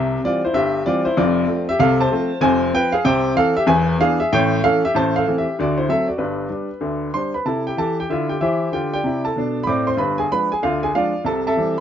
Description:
jazz, stride piano; 190 BPM; 4/4; swing 62% on 8ths; C major; A4 = 442 Hz
clear upright piano; solo; 0.0-11.8 s; E1 to D6; -17 LUFS; equal
moderate studio reverb, RT60 0.5 s; nothing above 7.5 kHz; -17 LUFS; side -9 dB against mid
0.0-7.5 A section; 7.5-11.8 B section
0.0 C; 1.2 F; 2.4 Fm; 3.1 C; 3.7 E7; 4.3 A7; 4.9 Am; 5.6 D7; 6.2 G; 7.5 C; 8.7 G7; 10.0 G7b9; 11.2 C

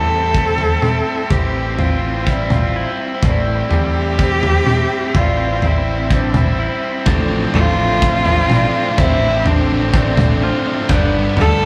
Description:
post-rock; 63 BPM; 4/4; straight; A minor; A4 = 440 Hz
warm cello; melody; 0.0-11.7 s; C4 to A4; -22 LUFS; equal
pedal steel guitar; sustained chords; 0.0-11.7 s; F3 to A5; -32 LUFS; equal
clean electric guitar; arpeggios; 0.0-11.7 s; G2 to F4; -27 LUFS; equal
vibraphone with medium hard mallets; arpeggios; 0.0-11.7 s; A4 to E5; -30 LUFS; equal
fuzz guitar; riff; 0.0-11.7 s; B3 to E4; -25 LUFS; equal; distortion
growling picked electric bass; bass; 0.0-11.7 s; G1 to E2; -23 LUFS; equal; overdrive
loose indie drum kit; drums; 0.3-11.6 s; kick drum, toms; -20 LUFS; equal
thick fuzz guitar; riff; 7.1-11.6 s; G2 to D3; -26 LUFS; equal; distortion
wet large studio reverb, RT60 0.9 s; band playing live in one room; -16 LUFS; mono
0.0-11.7 A section
build-up 0.0-11.7
0.0 Am7; 7.1 Dm7/A; 10.9 G7

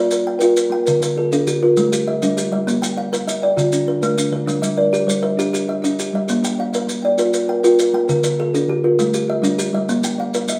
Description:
southern african traditional, mbira-style interlocking cycle; 133 BPM (dotted quarters); 12/8; straight; G equiheptatonic; A4 = 439 Hz
kalimba; arpeggios; 0.0-10.6 s; D3 to G5; -21 LUFS; equal
kalimba; arpeggios; 0.0-10.6 s; D3 to G5; -22 LUFS; equal
maracas; percussion; 0.1-10.6 s; -30 LUFS; equal
wet studio reverb, RT60 0.8 s; band playing live in one room; -18 LUFS; mono
0.0-10.6 A section
0.0 Bb; 0.9 Dm; 1.8 Gm; 2.7 Bb; 3.6 Dm; 4.5 Gm; 6.3 Bb; 8.1 Dm; 9.0 Gm; 9.9 Bb

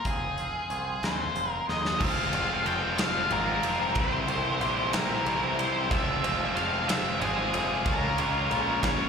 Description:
quiet-loud alternative rock; 62 BPM (dotted quarters); 6/8; straight; F harmonic minor; A4 = 440 Hz
octave-fuzz lead guitar; melody; 0.0-9.1 s; Ab4 to G5; -30 LUFS; left 2 dB; distortion, slapback echo, plate reverb
twangy electric guitar; arpeggios; 0.0-2.0 s; F3 to Ab4; -36 LUFS; right 2 dB; wide subtle chorus, slapback echo, plate reverb
growling picked electric bass; bass; 0.1-9.1 s; F1 to Eb2; -34 LUFS; right 1 dB; overdrive
huge arena drum kit; drums; 0.1-9.0 s; crash cymbal, hi-hat, kick drum, ride cymbal, snare drum; -32 LUFS; right 1 dB
bright tonewheel organ; sustained chords; 2.0-9.1 s; E4 to Ab5; -39 LUFS; right 2 dB
high-gain distorted guitar; riff; 2.0-9.1 s; C3 to F4; -31 LUFS; right 13 dB; distortion, slapback echo
overdriven electric guitar; riff; 2.0-9.1 s; C3 to F4; -31 LUFS; left 10 dB; slapback echo
light reverb; live gig heard through the venue's PA, recital hall reverb; -25 LUFS; side -6 dB against mid
0.0-2.0 A section; 2.0-9.1 B section
drum fill 1.7-2.0
0.1 Fm; 4.0 C; 5.9 Fm; 7.9 Db

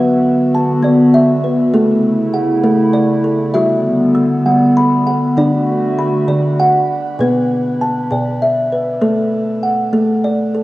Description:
world meditative, meditative tuned percussion; 66 BPM (dotted quarters); 6/8; straight; B minor; A4 = 440 Hz
warbly tape-like pad; sustained chords; 0.0-7.2 s; C#3 to F#4; -14 LUFS; equal; chorus, built-in reverb, cassette tape, shimmer reverb
kalimba; arpeggios; 0.0-10.6 s; B2 to E6; -14 LUFS; equal; cassette tape, shimmer reverb
wet spring reverb, RT60 2.6 s; home recording on cassette; -12 LUFS; side -17 dB against mid
0.0-10.6 A section
0.0 Bm; 1.7 A; 3.6 G; 5.4 D; 7.2 Bm; 9.0 Bm7/A

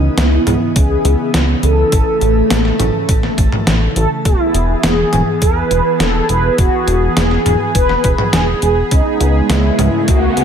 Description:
synthwave; 103 BPM; 4/4; straight; E major; A4 = 440 Hz
mellow synth brass; melody; 0.0-10.4 s; D#4 to B4; -17 LUFS; right 1 dB; chorus, digital delay, shimmer reverb
warm analog pad; sustained chords; 0.0-10.4 s; C#3 to G#4; -19 LUFS; right 1 dB; chorus, phaser, sidechain pumping, shimmer reverb
chorused synth bass; bass; 0.0-10.4 s; E1 to C#2; -15 LUFS; equal
detuned 8-bit digital drum machine; drums; 0.2-10.4 s; hi-hat, snare drum, toms; -18 LUFS; equal; overdrive, gated reverb
electronic kick drum; drums; 0.8-10.2 s; -15 LUFS; equal; overdrive
riser; sound effects; 9.6-10.4 s; -21 LUFS; equal
light reverb; -11 LUFS; side -8 dB against mid
0.0-10.4 A section
riser 9.6-10.4
0.0 C#m7; 1.9 A; 4.3 E; 8.9 C#m7

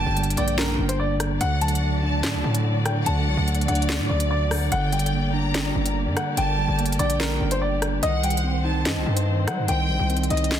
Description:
hip hop, drill; 145 BPM; 4/4; half-time; G harmonic minor; A4 = 438 Hz
clear grand piano; melody; 0.0-10.6 s; Bb4 to A5; -29 LUFS; left 2 dB; low-pass filter, tape echo
clear symphonic violin section; second line; 0.0-10.6 s; D5 to Bb5; -31 LUFS; right 1 dB; tape echo
mellow tine electric piano; accompaniment; 0.0-10.6 s; G2 to Eb5; -26 LUFS; right 3 dB; medium stereo tremolo, low-pass filter
warm studio string section; sustained chords; 0.0-10.6 s; D3 to D5; -32 LUFS; left 3 dB
distorted 808-style bass; bass; 0.0-10.6 s; G1 to G3; -25 LUFS; left 1 dB; distortion
drill drum kit; drums; 0.2-10.6 s; handclaps, hi-hat, rim click, snare drum; -28 LUFS; equal
light reverb; dense, heavily limited modern master; -20 LUFS; side -10 dB against mid
0.0-10.6 A section
0.0 Gm; 1.4 D; 4.7 Gm; 8.0 Cm

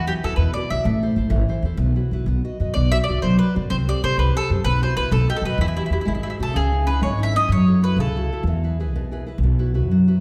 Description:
italian folk, Italian serenade; 126 BPM (dotted quarters); 6/8; rubato; A4 = 439 Hz
mandolin; melody; 0.0-8.4 s; E4 to E5; -27 LUFS; equal
nylon-string guitar; accompaniment; 0.0-10.2 s; B2 to D#5; -26 LUFS; equal
upright bass; bass; 0.0-10.2 s; G#1 to F#2; -23 LUFS; equal
wet recital hall reverb, RT60 1.2 s; recorded in a church or concert hall; -21 LUFS; mono
0.0-6.5 A section; 6.5-10.2 B section
0.0 Esus2; 0.9 Am; 1.8 Bsus4; 2.3 B; 2.8 Bm; 3.7 Am7/C; 4.6 Bsus4; 5.1 B; 5.6 Emadd9; 6.1 G#7; 6.5 C#madd9; 7.5 F#m7; 8.4 E; 9.4 Bsus4

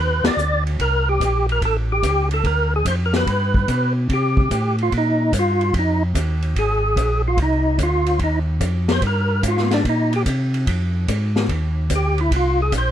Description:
soul jazz organ trio; 146 BPM; 4/4; swing 67% on 8ths; C minor; A4 = 444 Hz
percussive tonewheel organ; melody; 0.0-12.9 s; D4 to D5; -20 LUFS; equal; slow rotary speaker, overdrive, chorus vibrato
mellow tonewheel organ; bass; 0.0-12.9 s; Ab1 to C3; -20 LUFS; equal; chorus vibrato, slow rotary speaker
vintage drum kit; drums; 0.2-12.9 s; hi-hat, kick drum, ride cymbal, snare drum; -24 LUFS; equal
studio reverb; -17 LUFS; side -10 dB against mid
0.0-4.1 A section; 4.1-12.9 B section
band accent 0.2; tonewheel organ solo 4.1-12.9
0.0 G (rootless); 0.8 C5; 1.6 A7; 2.4 Ddim7; 3.3 G; 4.1 Cm7; 5.7 Fm7; 7.4 Cm7; 10.7 Fm7

